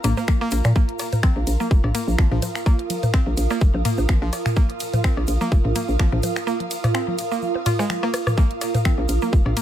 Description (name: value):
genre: minimal techno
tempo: 126 BPM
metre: 4/4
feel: swing 55% on 16ths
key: unclear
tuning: A4 = 436 Hz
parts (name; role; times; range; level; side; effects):
- mallet-like synth pluck; riff; 0.0-9.6 s; F3 to F4; -28 LUFS; left 1 dB; chorus, sidechain pumping, ping-pong delay
- hollow knocking FM bass; bass; 0.0-9.5 s; F1 to Bb2; -22 LUFS; equal; sidechain pumping
- garage drum kit; drums; 0.0-9.6 s; finger snaps, hi-hat, ride cymbal, rim click; -30 LUFS; equal; none
- electronic toms, cowbell, bongos and congas; percussion; 0.0-9.5 s; none; -25 LUFS; left 1 dB; none
- tube shaker; percussion; 0.0-9.6 s; none; -38 LUFS; left 3 dB; none
- ethereal airy pad; texture; 0.0-9.6 s; F4 to Eb6; -27 LUFS; right 4 dB; ensemble chorus, built-in reverb, sidechain pumping
- electronic kick drum; drums; 0.3-9.4 s; none; -17 LUFS; equal; none
room: little or no reverb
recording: none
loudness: -18 LUFS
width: side -11 dB against mid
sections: 0.0-9.6 A section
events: drum fill 8.0-8.4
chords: 0.0 Bb5